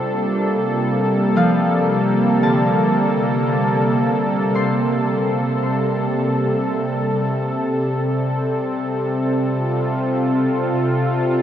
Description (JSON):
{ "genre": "ambient", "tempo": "56 BPM", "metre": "4/4", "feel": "straight", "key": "unclear", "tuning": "A4 = 440 Hz", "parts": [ { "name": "warm analog pad", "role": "sustained chords", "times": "0.0-11.4 s", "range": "C3 to A4", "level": "-18 LUFS", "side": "equal", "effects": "chorus, shimmer reverb" }, { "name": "Celtic harp", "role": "arpeggios", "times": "0.0-9.4 s", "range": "C3 to C6", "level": "-24 LUFS", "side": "left 2 dB", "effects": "analog delay, shimmer reverb" }, { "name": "clear studio cello section", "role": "bass", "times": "0.0-11.4 s", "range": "C3", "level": "-35 LUFS", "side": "equal", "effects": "none" }, { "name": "pedal harmonium", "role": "drone", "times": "0.0-11.4 s", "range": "C3 to G3", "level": "-28 LUFS", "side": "left 1 dB", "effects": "none" } ], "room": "wet huge ambient reverb, RT60 8.0 s", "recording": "dreamy mix soaked in reverb, cassette tape", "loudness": "-17 LUFS", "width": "side -10 dB against mid", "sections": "0.0-11.4 A section", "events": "none", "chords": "0.0 Gmadd9/C; 7.2 Dm7/C (rootless)" }